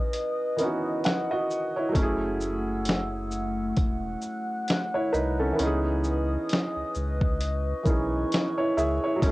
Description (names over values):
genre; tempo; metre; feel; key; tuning
lo-fi hip hop; 66 BPM; 4/4; swing 57% on 16ths; C# minor; A4 = 440 Hz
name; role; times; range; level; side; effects
felt-muted upright piano; accompaniment; 0.0-9.3 s; E3 to F#5; -28 LUFS; right 1 dB; cassette tape, low-pass filter
warbly tape-like pad; sustained chords; 0.0-9.3 s; A3 to F#6; -32 LUFS; left 1 dB; chorus, built-in reverb, low-pass filter, cassette tape
dusty soul sampler-style drum kit; drums; 0.1-9.3 s; hi-hat, kick drum, shaker, snare drum; -26 LUFS; equal; cassette tape
warm sub bass; bass; 2.0-9.3 s; E1 to C#2; -30 LUFS; equal; none
room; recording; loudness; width
moderate booth ambience, RT60 0.2 s; home recording on cassette; -24 LUFS; side -19 dB against mid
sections
0.0-9.3 A section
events
break 0.0-1.9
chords
0.0 C#m9; 1.9 F#m7; 5.6 C#m9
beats
0.13 1.04 | 1.95 2.86 3.77 4.67 | 5.58 6.49 7.40 8.31 | 9.22